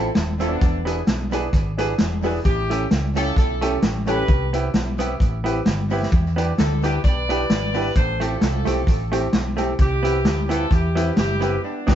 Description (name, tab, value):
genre	ska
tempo	131 BPM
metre	4/4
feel	swing 55% on 8ths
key	unclear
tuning	A4 = 441 Hz
part	clear horn section	melody	0.0-11.9 s	B3 to D5	-26 LUFS	equal	none
part	vintage hollow-body jazz guitar	accompaniment	0.0-11.9 s	A3 to A4	-27 LUFS	right 3 dB	tape echo
part	dark upright piano	stabs	0.0-11.9 s	B3 to B4	-28 LUFS	left 1 dB	none
part	hollow-body short-scale fingered electric bass	bass	0.0-11.9 s	Eb1 to E2	-24 LUFS	equal	none
part	vintage drum kit	drums	0.1-11.9 s	crash cymbal, hi-hat, kick drum, snare drum	-21 LUFS	equal	tape echo
room	moderate studio reverb, RT60 0.6 s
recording	band playing live in one room, nothing above 7.7 kHz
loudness	-18 LUFS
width	side -10 dB against mid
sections	0.0-11.9 A section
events	band accent 11.6-11.9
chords	0.0 Fmaj7; 0.6 E7; 2.5 A7; 4.3 Cmaj7; 6.1 Em7; 8.0 Am7; 9.8 Cmaj7